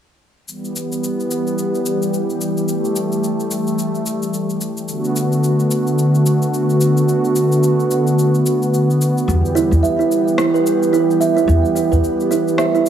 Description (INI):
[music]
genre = organic downtempo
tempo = 109 BPM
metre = 4/4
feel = swing 59% on 16ths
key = E minor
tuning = A4 = 441 Hz
[part]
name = warm analog pad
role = sustained chords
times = 0.5-12.9 s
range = D3 to G4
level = -16 LUFS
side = equal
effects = lush chorus
[part]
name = electronic cabasa and rim click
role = drums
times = 0.5-12.9 s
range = none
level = -27 LUFS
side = left 2 dB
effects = studio reverb
[part]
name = upright bass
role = bass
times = 9.3-12.0 s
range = E2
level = -16 LUFS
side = equal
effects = none
[part]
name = kalimba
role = arpeggios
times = 9.6-12.9 s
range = E4 to E5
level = -15 LUFS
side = right 4 dB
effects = digital delay
[sound]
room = moderate lush hall reverb, RT60 2.5 s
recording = none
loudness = -15 LUFS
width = side -9 dB against mid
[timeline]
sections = 0.5-12.9 A section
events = none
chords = 0.5 Em; 4.9 Bm7; 9.3 Em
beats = | 0.47 1.02 1.57 2.12 | 2.67 3.22 3.77 4.33 | 4.88 5.43 5.98 6.53 | 7.08 7.63 8.18 8.73 | 9.28 9.83 10.38 10.93 | 11.48 12.03 12.58